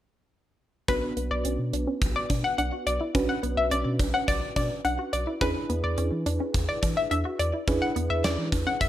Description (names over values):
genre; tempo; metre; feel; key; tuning
synth-pop; 106 BPM; 4/4; straight; B dorian; A4 = 440 Hz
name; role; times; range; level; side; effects
analog pluck; second line; 0.9-8.9 s; B4 to F#5; -28 LUFS; left 3 dB; chorus, slapback echo
FM electric piano with tremolo; accompaniment; 0.9-8.9 s; B3 to B4; -32 LUFS; right 3 dB; low-pass filter
wide unison pluck; arpeggios; 0.9-8.9 s; B3 to F#4; -34 LUFS; equal; low-pass filter, slapback echo
round analog bass; bass; 0.9-8.9 s; B1 to E3; -30 LUFS; equal; none
gated 80s drum kit; drums; 0.9-8.9 s; hi-hat, kick drum, snare drum; -29 LUFS; equal; none
room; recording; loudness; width
light reverb, small room ambience; none; -24 LUFS; side -12 dB against mid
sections
0.9-8.9 A section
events
filter sweep 0.9-8.9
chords
0.9 Bmadd9; 5.4 E7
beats
| 0.88 1.45 2.02 2.58 | 3.15 3.71 4.28 4.85 | 5.41 5.98 6.54 7.11 | 7.68 8.24 8.81